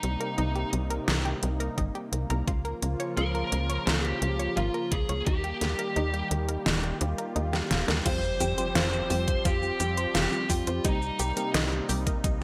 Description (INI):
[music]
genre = synthwave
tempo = 86 BPM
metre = 4/4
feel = straight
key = unclear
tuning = A4 = 440 Hz
[part]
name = high-gain lead guitar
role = melody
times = 0.0-11.5 s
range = Eb4 to C5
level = -34 LUFS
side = equal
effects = distortion, delay
[part]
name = warm analog pad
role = sustained chords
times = 0.0-12.4 s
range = C3 to G4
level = -37 LUFS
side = equal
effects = chorus, sidechain pumping
[part]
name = tight sequencer bass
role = bass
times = 0.0-12.4 s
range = Eb1 to F2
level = -32 LUFS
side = equal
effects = sidechain pumping
[part]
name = pop drum kit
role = drums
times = 0.0-12.4 s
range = crash cymbal, hi-hat, shaker, snare drum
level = -32 LUFS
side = equal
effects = overdrive, gated reverb
[part]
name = analog pluck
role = arpeggios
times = 0.2-12.4 s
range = Eb4 to Db5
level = -39 LUFS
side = equal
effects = chorus, digital delay
[part]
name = electronic kick drum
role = drums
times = 1.8-12.4 s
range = none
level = -31 LUFS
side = equal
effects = overdrive
[part]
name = swell and impact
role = sound effects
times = 7.0-10.8 s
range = none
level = -42 LUFS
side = equal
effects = none
[part]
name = mellow FM electric piano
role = stabs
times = 8.1-12.4 s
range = F3 to G4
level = -38 LUFS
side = equal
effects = chorus, digital delay
[sound]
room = light reverb, digital ambience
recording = bright 1980s-style digital production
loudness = -28 LUFS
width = mono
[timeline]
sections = 0.0-8.1 A section; 8.1-12.4 B section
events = swell 7.0-8.1; kick drops out 7.4-8.1; drum fill 7.5-8.1; impact 8.1-10.8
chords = 0.0 Cm7; 2.5 Bbm/Db; 5.3 Eb; 8.1 Fsus2; 10.8 Cm7